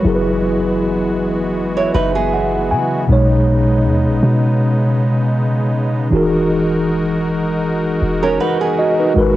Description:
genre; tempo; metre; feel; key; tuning
contemporary R&B; 79 BPM; 4/4; swing 54% on 16ths; unclear; A4 = 439 Hz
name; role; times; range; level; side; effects
mellow tine electric piano; accompaniment; 0.0-9.4 s; B2 to G#5; -16 LUFS; equal; medium stereo tremolo
pipe organ, strings celeste; sustained chords; 0.0-9.4 s; A#2 to A#4; -23 LUFS; equal; none
warm 808-style bass; bass; 0.0-9.4 s; E1 to C#3; -20 LUFS; equal; none
nylon-string guitar; arpeggios; 1.8-3.0, 8.2-9.1 s; B3 to C#5; -19 LUFS; right 5 dB; analog delay
room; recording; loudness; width
moderate studio ambience, RT60 0.5 s; home recording on cassette; -14 LUFS; side -15 dB against mid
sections
0.0-9.2 A section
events
tine electric piano fill 1.6-3.1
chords
0.0 F#9sus4; 3.1 B69; 6.1 Emaj9#11

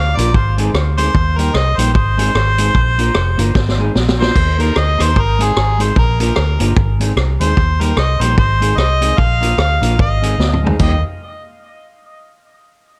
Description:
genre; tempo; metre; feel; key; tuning
ska; 149 BPM; 4/4; swing 58% on 8ths; Eb major; A4 = 440 Hz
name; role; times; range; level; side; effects
warm harmonica; melody; 0.0-11.0 s; Ab4 to F5; -21 LUFS; equal; dub echo
vintage muted fingered electric bass; bass; 0.0-11.0 s; F1 to Eb2; -18 LUFS; equal; none
mellow electric guitar; accompaniment; 0.2-10.9 s; G3 to Bb4; -24 LUFS; equal; subtle chorus
vintage drum kit; drums; 0.2-10.9 s; crash cymbal, hi-hat, kick drum, rim click, snare drum, toms; -20 LUFS; equal; none
room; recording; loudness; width
studio reverb; none; -14 LUFS; mono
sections
0.0-4.4 A section; 4.4-10.8 B section; 10.8-12.4 C section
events
drum fill 3.6-4.4, 10.4-10.8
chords
0.3 Ab; 1.1 Eb; 1.9 Ab; 2.7 Bb; 3.6 Ab; 4.0 Bb; 4.4 Eb; 5.2 Ab; 6.0 Bb; 6.8 Ab; 7.6 Eb; 8.4 Ab; 9.2 Bb; 10.0 Ab; 10.8 Eb

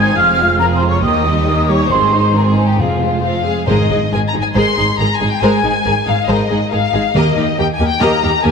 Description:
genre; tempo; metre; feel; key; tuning
cinematic, heroic adventure film score; 138 BPM; 4/4; straight; F minor, Ab major from 3.7 s; A4 = 440 Hz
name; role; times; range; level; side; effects
dark symphonic violin section; melody; 0.0-8.5 s; F4 to C6; -18 LUFS; left 6 dB; none
large flute ensemble; second line; 0.0-3.2 s; F5 to Ab6; -15 LUFS; right 1 dB; none
warm symphonic violin section; second line; 0.0-8.5 s; C4 to Eb5; -21 LUFS; left 3 dB; none
rich symphonic viola section; accompaniment; 0.0-8.5 s; Eb3 to Ab4; -20 LUFS; right 1 dB; none
rich symphonic cello section; bass; 0.0-8.5 s; Eb2 to Ab2; -19 LUFS; right 2 dB; none
warm studio double bass section; bass; 0.0-8.5 s; F1 to Eb2; -21 LUFS; right 3 dB; none
timpani; percussion; 2.8-4.3, 7.1-7.8 s; F2 to Eb3; -21 LUFS; left 1 dB; none
room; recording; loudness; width
wet scoring stage reverb, RT60 2.0 s; none; -12 LUFS; side -6 dB against mid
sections
0.0-3.7 A section; 3.7-8.5 B section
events
none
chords
0.2 Fm; 1.0 Eb; 1.9 Ab; 2.8 Fm; 3.7 Abadd9; 7.2 Eb

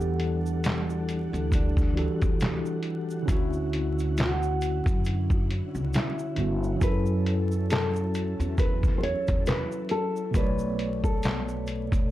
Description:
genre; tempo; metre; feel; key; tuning
lo-fi hip hop; 68 BPM; 4/4; swing 57% on 16ths; E dorian; A4 = 441 Hz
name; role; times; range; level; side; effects
nylon-string guitar; melody; 0.0-12.1 s; D4 to C#5; -33 LUFS; equal; low-pass filter
tine electric piano; accompaniment; 0.0-12.1 s; B2 to F#5; -31 LUFS; equal; slow stereo tremolo, low-pass filter
ensemble organ-string; sustained chords; 0.0-12.1 s; B2 to F#5; -37 LUFS; equal; ensemble chorus, low-pass filter
upright bass; bass; 0.0-12.1 s; G1 to F#2; -30 LUFS; equal; none
tube shaker; percussion; 0.0-12.1 s; none; -54 LUFS; right 6 dB; none
trip hop sampler-style drum kit; drums; 0.2-12.1 s; handclaps, hi-hat, kick drum, snare drum; -26 LUFS; equal; none
room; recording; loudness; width
light reverb; dark, warm production, vinyl crackle; -24 LUFS; side -14 dB against mid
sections
0.0-12.1 A section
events
none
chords
0.0 Em11; 3.3 Dmaj9; 6.8 F#m7; 10.3 Bm9

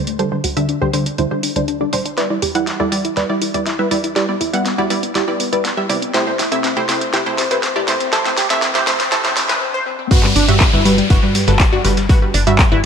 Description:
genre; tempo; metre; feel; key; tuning
progressive house; 121 BPM; 4/4; straight; G major; A4 = 440 Hz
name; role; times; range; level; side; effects
tight sequenced synth; arpeggios; 0.0-12.8 s; G3 to D5; -20 LUFS; left 3 dB; chorus, sidechain pumping, digital delay
tight sequencer bass; bass; 0.0-12.9 s; E1 to E2; -22 LUFS; left 1 dB; sidechain pumping
pop drum kit; drums; 0.1-12.7 s; crash cymbal, handclaps, hi-hat, snare drum; -20 LUFS; equal; high-pass filter on hats, high-pass filter on snare, high-pass filter on cymbals
wide unison pluck; stabs; 0.2-12.8 s; G2 to F#5; -18 LUFS; right 3 dB; sidechain pumping, digital delay
riser, noise sweep and downlifter; sound effects; 6.4-12.9 s; none; -25 LUFS; equal; none
electronic kick drum; drums; 10.1-12.7 s; none; -13 LUFS; equal; none
raw garage drum kit; drums; 10.1-12.7 s; hi-hat, snare drum; -30 LUFS; equal; none
room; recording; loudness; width
moderate lush hall reverb, RT60 2.0 s; high-pass filter; -14 LUFS; side -7 dB against mid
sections
0.0-10.1 A section; 10.1-12.9 B section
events
build-up 0.0-10.1; filter sweep on synth arpeggio sound 0.0-10.1; filter sweep on synth pluck 0.0-10.1; filter sweep 0.0-10.1; drum fill 2.2-9.6; break 9.6-10.1; drop 10.1-12.9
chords
0.0 D7sus4; 2.2 Em7; 6.1 C6; 10.1 Gmaj7

